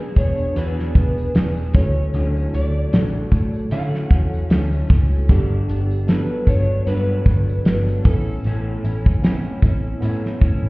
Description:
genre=indie pop, bedroom pop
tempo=76 BPM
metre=4/4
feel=swing 55% on 16ths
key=A major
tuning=A4 = 436 Hz
part: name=electric guitar through a small old amp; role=accompaniment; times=0.0-10.7 s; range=G2 to G#4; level=-29 LUFS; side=left 2 dB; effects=analog chorus, vibrato effect
part: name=tine electric piano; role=accompaniment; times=0.0-10.7 s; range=C#3 to G#5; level=-30 LUFS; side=right 2 dB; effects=medium stereo tremolo, cassette tape
part: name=electric slide guitar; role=melody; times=0.2-10.7 s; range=G4 to F#5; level=-28 LUFS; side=equal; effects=analog chorus, analog delay
part: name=vintage muted picked electric bass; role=bass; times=0.2-10.7 s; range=E1 to D3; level=-20 LUFS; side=equal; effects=none
part: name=damped 70s drum kit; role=drums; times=0.2-10.6 s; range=hi-hat, kick drum, snare drum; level=-16 LUFS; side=equal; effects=none
part: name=tambourine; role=percussion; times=0.2-10.2 s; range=none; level=-59 LUFS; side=left 4 dB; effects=none
room=small room ambience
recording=heard muffled through a wall, stone room reverb, EQ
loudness=-16 LUFS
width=side -22 dB against mid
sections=0.0-10.7 A section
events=none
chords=0.0 E7; 1.7 Dmaj7; 5.3 Gmaj7; 8.1 Amaj7

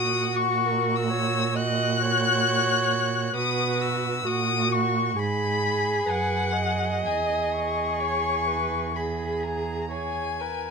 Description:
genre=classical, slow romantic movement for string quartet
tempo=58-67 BPM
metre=4/4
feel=rubato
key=unclear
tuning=A4 = 440 Hz
part: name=muted violin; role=melody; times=0.0-10.7 s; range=F#5 to F#6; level=-26 LUFS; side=left 5 dB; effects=none
part: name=muted violin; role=second line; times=0.0-10.7 s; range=F#4 to A#4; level=-31 LUFS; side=left 2 dB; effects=none
part: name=muted viola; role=accompaniment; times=0.0-10.7 s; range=F#4 to D#5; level=-29 LUFS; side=right 4 dB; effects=none
part: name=muted cello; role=bass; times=0.0-10.7 s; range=E2 to B2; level=-29 LUFS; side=right 6 dB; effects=none
room=little or no reverb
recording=close, detailed microphones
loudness=-22 LUFS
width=side -5 dB against mid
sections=0.0-10.7 A section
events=none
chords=0.0 F#/A#; 3.4 B5; 5.2 G#m; 7.0 Emaj7

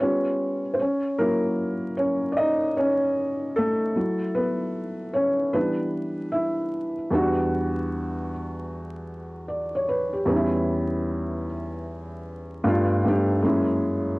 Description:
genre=hip hop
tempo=76 BPM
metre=4/4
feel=swing 61% on 16ths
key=E dorian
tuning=A4 = 442 Hz
part: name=felt-muted upright piano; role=solo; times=0.0-14.2 s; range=E2 to E5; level=-23 LUFS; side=equal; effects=cassette tape, low-pass filter
room=light reverb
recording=home recording on cassette, vinyl crackle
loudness=-22 LUFS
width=side -23 dB against mid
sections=0.0-7.1 A section; 7.1-14.2 A section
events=felt piano solo 0.0-7.1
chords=0.0 G7; 0.8 F#7; 4.0 B9sus4/F#; 5.5 Em7; 7.1 Em9; 10.3 Em6; 12.6 G9; 13.4 F#9

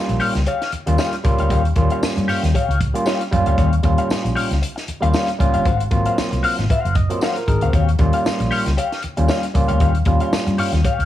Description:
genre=funk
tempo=116 BPM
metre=4/4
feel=swing 56% on 16ths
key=Eb mixolydian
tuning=A4 = 439 Hz
part: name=overdriven tine electric piano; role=stabs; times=0.0-10.8 s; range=Gb3 to Eb5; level=-22 LUFS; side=right 2 dB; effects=phaser
part: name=clean electric guitar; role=accompaniment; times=0.1-11.1 s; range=Gb4 to F5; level=-24 LUFS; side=left 4 dB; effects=wah
part: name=vintage muted fingered electric bass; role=bass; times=0.1-11.1 s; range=Gb1 to G2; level=-19 LUFS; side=left 1 dB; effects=none
part: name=compact cocktail drum kit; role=drums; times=0.1-11.1 s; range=hi-hat, kick drum, snare drum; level=-22 LUFS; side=equal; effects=none
part: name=tambourine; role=percussion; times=1.0-10.5 s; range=none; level=-37 LUFS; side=left 3 dB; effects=none
room=light reverb, studio reverb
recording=vinyl crackle, small room ambience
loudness=-16 LUFS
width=side -12 dB against mid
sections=0.0-11.1 A section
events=tine electric piano fill 6.7-7.7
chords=0.0 Eb9; 5.7 Ab13; 7.7 Eb9

